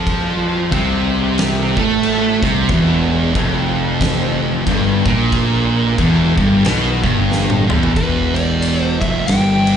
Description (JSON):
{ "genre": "stoner and doom metal", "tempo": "91 BPM", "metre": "4/4", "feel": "swing 59% on 8ths", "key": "E phrygian", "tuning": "A4 = 439 Hz", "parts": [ { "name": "distorted electric guitar", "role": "riff", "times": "0.0-7.9 s", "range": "E2 to A3", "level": "-22 LUFS", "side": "left 1 dB", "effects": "overdrive" }, { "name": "thick fuzz guitar", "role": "riff", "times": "0.0-9.8 s", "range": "E2 to A3", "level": "-21 LUFS", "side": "left 7 dB", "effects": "distortion, slapback echo" }, { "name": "thick fuzz guitar", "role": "riff", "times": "0.0-9.8 s", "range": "E2 to A3", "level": "-18 LUFS", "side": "right 7 dB", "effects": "distortion, slapback echo" }, { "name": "fuzz fingered electric bass", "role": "bass", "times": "0.0-9.8 s", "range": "E1 to A2", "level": "-20 LUFS", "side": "equal", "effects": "overdrive" }, { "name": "oversized low-tuned drum kit", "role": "drums", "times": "0.1-9.8 s", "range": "crash cymbal, kick drum, ride cymbal, snare drum, toms", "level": "-21 LUFS", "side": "left 1 dB", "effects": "none" }, { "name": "fuzz lead guitar", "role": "melody", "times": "8.0-9.8 s", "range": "B4 to G5", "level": "-21 LUFS", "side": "left 2 dB", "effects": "distortion, tape echo" } ], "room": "small room ambience", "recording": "live gig heard through the venue's PA, club reverb, nothing above 10.6 kHz", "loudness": "-13 LUFS", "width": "side -8 dB against mid", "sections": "0.0-8.0 A section; 8.0-9.8 B section", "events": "drum fill 7.3-8.0", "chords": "0.0 C5; 2.7 Em", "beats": "| 0.07 0.73 1.38 2.04 | 2.70 3.35 4.01 4.67 | 5.33 5.98 6.64 7.30 | 7.96 8.62 9.28" }